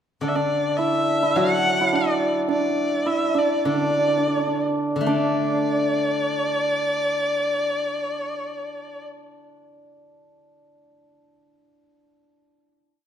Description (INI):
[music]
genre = chinese traditional, Chinese chamber ensemble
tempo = 74-108 BPM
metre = 2/4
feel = straight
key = D gong mode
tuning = A4 = 439 Hz
[part]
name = clear erhu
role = melody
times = 0.2-9.0 s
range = D5 to F#5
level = -24 LUFS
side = left 2 dB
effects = none
[part]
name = hammered dulcimer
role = second line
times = 0.2-9.6 s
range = D4 to F#4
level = -23 LUFS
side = right 3 dB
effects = none
[part]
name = steel-string zither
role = accompaniment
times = 0.2-11.6 s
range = D3 to D4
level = -28 LUFS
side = left 4 dB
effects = none
[sound]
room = moderate recital hall reverb, RT60 1.7 s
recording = none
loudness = -20 LUFS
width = side -8 dB against mid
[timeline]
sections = 0.2-5.1 A section; 5.1-8.3 final chord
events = slowing down 2.5-5.1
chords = none